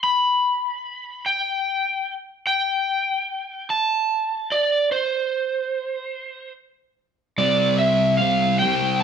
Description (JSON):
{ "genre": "rock", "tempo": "49 BPM (dotted quarters)", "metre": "6/8", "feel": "straight", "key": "unclear", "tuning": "A4 = 439 Hz", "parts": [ { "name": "overdriven slide guitar", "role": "melody", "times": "0.0-9.0 s", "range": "C5 to B5", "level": "-20 LUFS", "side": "equal", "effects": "none" }, { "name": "thick fuzz guitar", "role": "riff", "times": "7.4-9.0 s", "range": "C3 to C4", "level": "-20 LUFS", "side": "equal", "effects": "distortion" } ], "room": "wet large studio reverb, RT60 1.0 s", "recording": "band playing live in one room", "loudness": "-20 LUFS", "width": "side -7 dB against mid", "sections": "0.0-7.4 A section; 7.4-9.0 B section", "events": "build-up 7.4-9.0", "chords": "0.0 N.C.; 7.4 C5" }